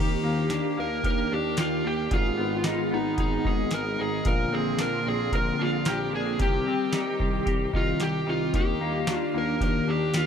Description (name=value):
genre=dream pop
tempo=112 BPM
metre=4/4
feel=straight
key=Eb major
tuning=A4 = 441 Hz
part: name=overdriven slide guitar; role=melody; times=0.0-10.3 s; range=Eb4 to Bb4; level=-28 LUFS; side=right 1 dB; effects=ping-pong delay
part: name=hollow soft pad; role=sustained chords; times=0.0-10.3 s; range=D3 to Ab4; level=-30 LUFS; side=equal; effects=ensemble chorus
part: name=semi-hollow electric guitar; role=arpeggios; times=0.0-10.3 s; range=Ab2 to Bb4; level=-31 LUFS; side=left 4 dB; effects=wide subtle chorus, ping-pong delay
part: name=mellow tuba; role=bass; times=0.0-10.3 s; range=Ab1 to Eb2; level=-33 LUFS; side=equal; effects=none
part: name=booming analog drum machine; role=drums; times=0.5-10.3 s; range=hi-hat, kick drum, snare drum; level=-28 LUFS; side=equal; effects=none
room=light reverb, digital ambience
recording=dark, warm production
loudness=-24 LUFS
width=side -8 dB against mid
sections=0.0-10.3 A section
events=none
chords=0.0 Ebmaj7; 2.1 Abm; 4.3 Bbadd9; 6.4 Cm; 8.5 Ebmaj7